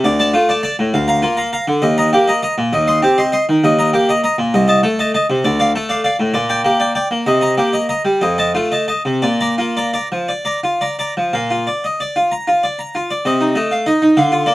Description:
classical, baroque-style suite movement for harpsichord; 55-68 BPM (dotted quarters); 6/8; rubato; Bb major; A4 = 440 Hz
harpsichord; solo; 0.0-14.5 s; C2 to C6; -14 LUFS; equal
light reverb; -14 LUFS; side -17 dB against mid
0.0-11.3 A section; 11.3-14.5 B section
0.0 Dm; 0.9 Bb/D; 1.8 Eb; 2.7 Cm/Eb; 3.6 Eb; 4.5 Adim/C; 5.4 Dm; 6.3 Gm/Bb; 7.3 Cm7; 8.2 F7; 9.2 Bb; 13.2 Adim/C
| 0.04 0.95 | 1.84 2.73 | 3.63 4.53 | 5.43 6.34 | 7.26 8.22 | 9.23 10.29 | 11.35 12.31 | 13.25 14.15

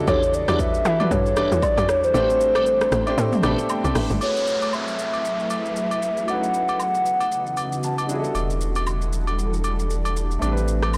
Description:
amapiano; 116 BPM; 4/4; swing 58% on 16ths; F# minor; A4 = 440 Hz
clear baby grand piano; accompaniment; 0.0-11.0 s; F#3 to B5; -31 LUFS; equal
granular cloud pad; sustained chords; 0.0-11.0 s; C#3 to D#5; -33 LUFS; equal; built-in reverb, sidechain pumping
tight log drum bass; bass; 0.0-4.2 s; G1 to E3; -26 LUFS; equal
hollow clarinet-like synth lead; melody; 0.1-8.1 s; B#4 to F#5; -24 LUFS; equal; chorus, digital delay
tonewheel organ; stabs; 0.1-4.1 s; C4 to B4; -34 LUFS; equal; overdrive, chorus vibrato, slow rotary speaker, digital delay
deep house drum kit; drums; 0.1-11.0 s; hi-hat, kick drum, rim click, shaker, toms; -31 LUFS; equal; overdrive
agogo bells and woodblock; percussion; 0.1-11.0 s; -33 LUFS; equal
downlifter; sound effects; 4.2-8.3 s; -35 LUFS; equal
warm sub bass; bass; 8.3-11.0 s; E1 to A1; -26 LUFS; equal
light reverb, digital ambience; blown-out, overdriven recording, overdrive; -22 LUFS; mono
0.0-4.2 A section; 4.2-11.0 B section
drop 0.0-4.2; kick muted 2.1-4.2; grand piano fill 3.2-4.2, 7.6-8.4
0.0 Em11; 2.1 Am11; 4.2 F#m11; 6.3 C#m11; 8.1 Em11; 10.4 Am11
| 0.08 0.59 1.11 1.63 | 2.15 2.66 3.18 3.70 | 4.21 4.73 5.25 5.76 | 6.28 6.80 7.32 7.83 | 8.35 8.87 9.39 9.90 | 10.42 10.94

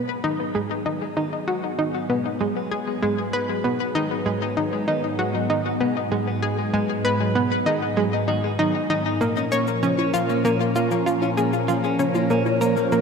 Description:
ambient, sequencer-driven space music; 97 BPM; 4/4; straight; G# dorian; A4 = 440 Hz
phased analog pad; sustained chords; 0.0-13.0 s; G#2 to A#4; -26 LUFS; equal; phaser, chorus, shimmer reverb
analog pluck; riff; 0.0-13.0 s; G#3 to C#5; -22 LUFS; left 1 dB; chorus, cassette tape, ping-pong delay, shimmer reverb
clean electric guitar; arpeggios; 0.1-12.9 s; E#3 to F#4; -30 LUFS; moving between left 2 dB and right 6 dB; auto-pan, ping-pong delay, shimmer reverb
cabasa and congas; percussion; 9.2-13.0 s; -33 LUFS; right 1 dB; ping-pong delay
wet lush hall reverb, RT60 2.7 s; dark, warm production; -20 LUFS; side -5 dB against mid
0.0-13.0 A section
fade-in on clean electric guitar 0.0-13.0; fade-in on analog synth pad 0.0-13.0
0.0 G#m7; 9.2 A#m
0.55 1.17 | 1.79 2.41 3.02 3.64 | 4.26 4.88 5.50 6.12 | 6.74 7.35 7.97 8.59 | 9.21 9.83 10.45 11.07 | 11.68 12.30 12.92

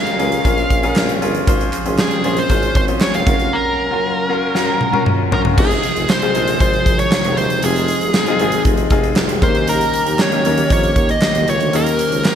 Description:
1980s-style pop; 117 BPM; 4/4; straight; A4 = 440 Hz
dark smooth lead guitar; melody; 0.0-12.3 s; Ab4 to F5; -19 LUFS; equal; overdrive
clear baby grand piano; accompaniment; 0.0-12.3 s; Ab3 to C5; -21 LUFS; left 3 dB; lush chorus
huge arena drum kit; drums; 0.1-12.3 s; crash cymbal, hi-hat, kick drum, snare drum, tambourine, toms; -18 LUFS; right 1 dB; gated reverb
warm tuba; bass; 0.2-12.2 s; Eb1 to F2; -23 LUFS; equal
group handclap; percussion; 1.0-12.3 s; -34 LUFS; right 3 dB
chorused pulse-width pad; sustained chords; 1.5-12.3 s; C3 to F5; -24 LUFS; right 1 dB
moderate lush hall reverb, RT60 1.8 s; bright 1980s-style digital production; -14 LUFS; side -9 dB against mid
0.0-5.6 A section; 5.6-12.3 B section
drum fill 4.6-5.6
0.0 Bbm7; 1.5 Dbmaj7/Ab; 3.3 Gbmaj7; 5.6 Fm7; 9.4 Eb7
0.45 0.96 | 1.48 1.99 2.50 3.01 | 3.53 4.04 4.55 5.07 | 5.58 6.09 6.60 7.12 | 7.63 8.14 8.65 9.17 | 9.68 10.19 10.71 11.22 | 11.73 12.24

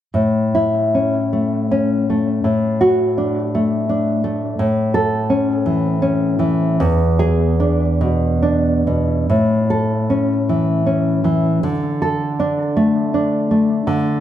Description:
romantic piece for solo classical guitar; 44-58 BPM (dotted quarters); 6/8; rubato; A major; A4 = 440 Hz
nylon-string guitar; solo; 0.1-14.2 s; E2 to A4; -15 LUFS; equal
moderate recital hall reverb, RT60 1.4 s; close, detailed microphones; -15 LUFS; side -11 dB against mid
0.1-9.3 A section; 9.3-14.2 B section
0.1 A; 2.5 D/A; 4.6 A; 6.8 E7; 9.3 A; 11.6 D5
| 0.14 1.32 | 2.45 3.53 | 4.58 5.66 | 6.81 8.01 | 9.29 10.47 | 11.63 12.76 | 13.86

